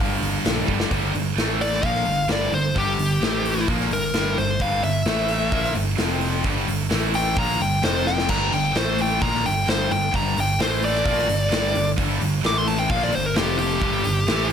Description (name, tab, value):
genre	hard rock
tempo	130 BPM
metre	4/4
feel	straight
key	G dorian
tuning	A4 = 441 Hz
part	dark smooth lead guitar	melody	0.0-14.5 s	G4 to D6	-24 LUFS	left 1 dB	overdrive, slapback echo
part	distorted electric guitar	riff	0.0-14.5 s	F2 to Bb3	-28 LUFS	left 10 dB	distortion
part	scooped high-gain guitar	riff	0.0-14.5 s	F2 to Bb3	-27 LUFS	right 12 dB	distortion
part	picked electric bass	bass	0.0-14.5 s	F1 to Bb1	-27 LUFS	right 1 dB	none
part	big rock drum kit	drums	0.0-14.5 s	crash cymbal, hi-hat, kick drum, snare drum, splash cymbal	-26 LUFS	equal	none
room	light reverb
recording	none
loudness	-19 LUFS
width	side -8 dB against mid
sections	0.9-14.5 A section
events	drum fill 0.7, 8.1; lead electric guitar solo 0.9-14.5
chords	0.0 Gm; 0.9 G5; 1.4 A5; 1.8 Gm; 3.2 A5; 3.7 Gm; 5.1 A5; 5.5 Gm; 6.0 F5; 6.4 G5; 6.9 A5; 7.4 Gm; 7.8 F5; 8.3 Gm; 8.8 A5; 9.2 Gm; 10.6 A5; 11.1 Gm; 12.4 A5; 12.9 Gm; 13.4 F5; 13.8 G5